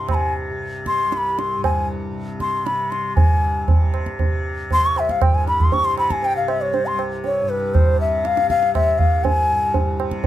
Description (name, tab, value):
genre	indian classical, Hindustani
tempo	118 BPM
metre	3/4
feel	straight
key	unclear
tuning	A4 = 440 Hz
part	mellow bansuri	melody	0.0-10.0 s	B4 to Db6	-19 LUFS	left 2 dB	none
part	tanpura	drone	0.0-10.3 s	C2 to C3	-28 LUFS	left 1 dB	none
part	tabla	percussion	0.1-10.3 s	none	-19 LUFS	right 2 dB	none
room	moderate small room ambience, RT60 0.5 s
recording	close, detailed microphones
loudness	-17 LUFS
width	side -13 dB against mid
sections	0.0-3.2 A section; 3.2-10.3 B section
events	speeding up 0.0-10.3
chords	none